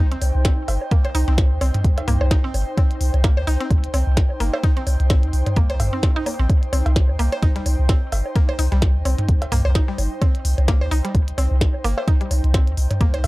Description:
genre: minimal techno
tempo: 129 BPM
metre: 4/4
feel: swing 57% on 16ths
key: C minor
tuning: A4 = 441 Hz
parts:
  - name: punchy sub bass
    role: bass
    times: 0.0-13.3 s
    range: G1 to Eb2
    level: -19 LUFS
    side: equal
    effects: sidechain pumping
  - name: airy breathy pad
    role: texture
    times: 0.0-13.3 s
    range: Eb4 to G5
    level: -31 LUFS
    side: equal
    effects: chorus, sidechain pumping
  - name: mallet-like synth pluck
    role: riff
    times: 0.1-13.2 s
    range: G3 to C5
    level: -28 LUFS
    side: equal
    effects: chorus, sidechain pumping, analog delay
  - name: minimal click drum kit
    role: drums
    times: 0.1-13.3 s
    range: hi-hat, snare drum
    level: -28 LUFS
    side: equal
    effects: none
  - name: electronic woodblock, cowbell and toms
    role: percussion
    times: 0.2-13.3 s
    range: none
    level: -26 LUFS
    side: equal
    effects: analog delay
  - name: electronic kick drum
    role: drums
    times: 0.4-13.1 s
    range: none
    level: -17 LUFS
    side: equal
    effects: none
room: little or no reverb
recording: dry, gritty hardware recording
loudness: -17 LUFS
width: side -20 dB against mid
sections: 0.0-13.3 A section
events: none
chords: 0.0 Cm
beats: 0.45 | 0.91 1.38 1.84 2.31 | 2.77 3.24 3.71 4.17 | 4.63 5.10 5.57 6.03 | 6.50 6.96 7.43 7.89 | 8.36 8.82 9.29 9.75 | 10.22 10.68 11.15 11.61 | 12.08 12.54 13.01

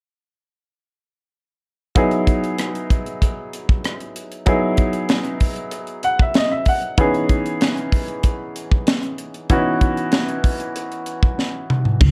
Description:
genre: electric jazz fusion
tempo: 96 BPM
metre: 4/4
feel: straight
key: C# minor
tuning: A4 = 440 Hz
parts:
  - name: bright grand piano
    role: accompaniment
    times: 2.0-12.0 s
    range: E3 to F#5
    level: -24 LUFS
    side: equal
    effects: plate reverb
  - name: crisp fusion drum kit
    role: drums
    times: 2.0-12.1 s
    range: crash cymbal, hi-hat, kick drum, rim click, snare drum, toms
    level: -20 LUFS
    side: equal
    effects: none
  - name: upright bass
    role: bass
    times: 12.0-12.1 s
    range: C#2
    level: -14 LUFS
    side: equal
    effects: none
room: light reverb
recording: dark, warm production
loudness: -20 LUFS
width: mono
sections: 2.0-12.0 A section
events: grand piano fill 5.7-7.0; drum fill 11.4-12.0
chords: 2.0 Emaj7; 7.0 C#m9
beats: | 1.96 2.59 3.22 3.85 | 4.47 5.10 5.73 6.36 | 6.99 7.62 8.24 8.87 | 9.50 10.13 10.76 11.39 | 12.01

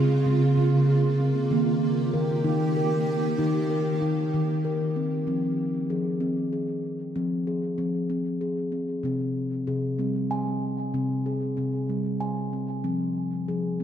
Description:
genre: world meditative, meditative tuned percussion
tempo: 64 BPM (dotted quarters)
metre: 6/8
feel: straight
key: F minor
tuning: A4 = 441 Hz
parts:
  - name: granular cloud pad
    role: sustained chords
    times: 0.0-5.2 s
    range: Db3 to G4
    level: -29 LUFS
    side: right 2 dB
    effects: built-in reverb
  - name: steel tongue drum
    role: arpeggios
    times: 0.0-13.8 s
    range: C3 to Ab5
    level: -24 LUFS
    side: equal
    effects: diffuse ambient delay
room: wet echo chamber reverb, RT60 1.5 s, small room ambience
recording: none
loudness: -24 LUFS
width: side -9 dB against mid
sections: 0.0-5.3 A section; 5.3-13.8 B section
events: none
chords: 0.0 Db; 1.5 Eb; 5.3 Fm; 9.0 C5; 12.8 Fm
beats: 0.58 | 1.51 2.45 | 3.39 4.33 | 5.27 6.21 | 7.15 8.10 | 9.04 9.99 | 10.94 11.89 | 12.84 13.79

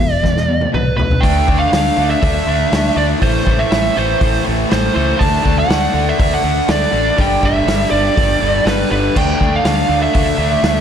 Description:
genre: classic rock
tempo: 121 BPM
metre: 4/4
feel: straight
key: unclear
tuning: A4 = 441 Hz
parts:
  - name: fuzz lead guitar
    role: melody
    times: 0.0-10.8 s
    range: B4 to A5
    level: -17 LUFS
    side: right 2 dB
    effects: distortion, slapback echo
  - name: distorted electric guitar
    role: riff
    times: 0.0-10.8 s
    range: E2 to D4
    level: -18 LUFS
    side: left 1 dB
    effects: distortion, slapback echo
  - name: fingered electric bass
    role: bass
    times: 0.0-10.8 s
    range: E1 to E2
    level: -20 LUFS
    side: equal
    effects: none
  - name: vintage drum kit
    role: drums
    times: 0.2-10.8 s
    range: crash cymbal, hi-hat, kick drum, snare drum, toms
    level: -18 LUFS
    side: equal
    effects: none
room: moderate lush hall reverb, RT60 2.0 s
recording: big arena sound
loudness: -12 LUFS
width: side -8 dB against mid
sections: 0.0-1.2 A section; 1.2-10.8 B section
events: drum fill 0.2-1.2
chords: 0.0 E5; 1.2 Dm; 3.2 Am; 5.2 D; 7.2 G5; 9.2 Dm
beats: 0.24 0.73 | 1.23 1.73 2.22 2.72 | 3.21 3.71 4.20 4.70 | 5.19 5.69 6.18 6.68 | 7.18 7.67 8.17 8.66 | 9.16 9.65 10.15 10.64

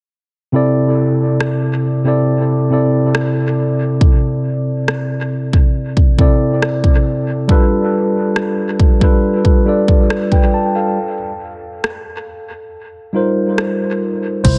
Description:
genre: contemporary R&B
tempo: 69 BPM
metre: 4/4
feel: straight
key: C major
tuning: A4 = 441 Hz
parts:
  - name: mellow tine electric piano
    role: accompaniment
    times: 0.5-14.6 s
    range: C3 to A5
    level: -17 LUFS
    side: equal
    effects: dub echo
  - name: pop drum kit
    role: drums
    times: 1.4-14.6 s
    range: crash cymbal, hi-hat, kick drum, rim click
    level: -17 LUFS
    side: equal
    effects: none
  - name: vintage muted fingered electric bass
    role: bass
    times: 14.4-14.6 s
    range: C2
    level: -15 LUFS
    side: equal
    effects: none
room: little or no reverb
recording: echo-heavy mix, nothing above 10.5 kHz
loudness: -15 LUFS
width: mono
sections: 0.5-14.4 A section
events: break 11.0-14.4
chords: 0.5 C69; 7.5 G9; 11.0 Eb69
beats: | 0.53 1.40 2.27 3.14 | 4.01 4.88 5.75 6.62 | 7.49 8.36 9.23 10.10 | 10.97 11.84 12.71 13.58 | 14.45

